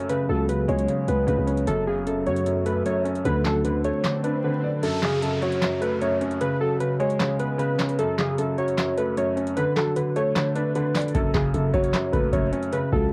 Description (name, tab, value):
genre	hip hop, trap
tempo	152 BPM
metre	4/4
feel	half-time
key	F# minor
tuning	A4 = 439 Hz
part	felt-muted upright piano	accompaniment	0.0-13.1 s	F#2 to D5	-28 LUFS	equal	low-pass filter
part	warbly tape-like pad	sustained chords	0.0-4.8 s	F#3 to A4	-35 LUFS	equal	chorus, built-in reverb
part	booming analog drum machine	drums	0.0-13.1 s	crash cymbal, handclaps, hi-hat, kick drum, snare drum	-30 LUFS	equal	none
part	warbly lo-fi synth keys	melody	0.1-13.1 s	G#4 to C#5	-29 LUFS	equal	chorus, low-pass filter, cassette tape
part	growling 808-style bass	bass	0.3-3.9, 11.1-13.1 s	F#1 to F#2	-29 LUFS	equal	none
part	swell and downlifter	sound effects	3.8-8.0 s	none	-39 LUFS	equal	none
room	light reverb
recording	home recording on cassette, vinyl crackle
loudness	-24 LUFS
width	mono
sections	0.0-4.8 A section; 4.8-13.1 B section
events	swell 3.8-4.8; drums muted 4.4-4.8; kick muted 4.8-11.1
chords	0.1 C#7sus4; 1.7 F#m; 3.3 D; 4.8 F#m; 6.4 C#7sus4; 8.0 F#m; 9.6 D; 11.1 F#m